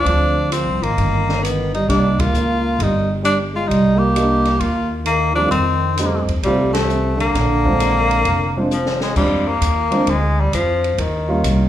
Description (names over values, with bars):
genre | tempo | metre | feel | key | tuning
jazz, small-group swing and bop | 132 BPM | 4/4 | swing 67% on 8ths | Bb mixolydian | A4 = 438 Hz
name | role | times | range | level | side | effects
clear tenor saxophone | melody | 0.0-11.7 s | Eb3 to G4 | -19 LUFS | left 2 dB | plate reverb, slapback echo
dark trombone | second line | 0.0-8.7 s | C3 to Bb3 | -21 LUFS | right 2 dB | plate reverb, slapback echo
warm upright piano | accompaniment | 0.0-11.7 s | F3 to F4 | -22 LUFS | right 1 dB | plate reverb, slapback echo
upright bass | bass | 0.0-11.7 s | F1 to F2 | -20 LUFS | equal | none
open jazz drum kit | drums | 0.1-11.6 s | crash cymbal, hi-hat, kick drum, ride cymbal, snare drum | -26 LUFS | equal | none
room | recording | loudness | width
moderate club reverb, RT60 0.5 s | live gig heard through the venue's PA, club reverb | -15 LUFS | side -12 dB against mid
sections
0.0-9.2 A section; 9.2-11.7 A section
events
band accent 2.1, 6.7; drum fill 8.7-9.2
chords
0.1 Dm7; 1.0 Gaug; 1.9 Cm7; 5.5 F7; 7.3 Bb7; 11.0 Eb7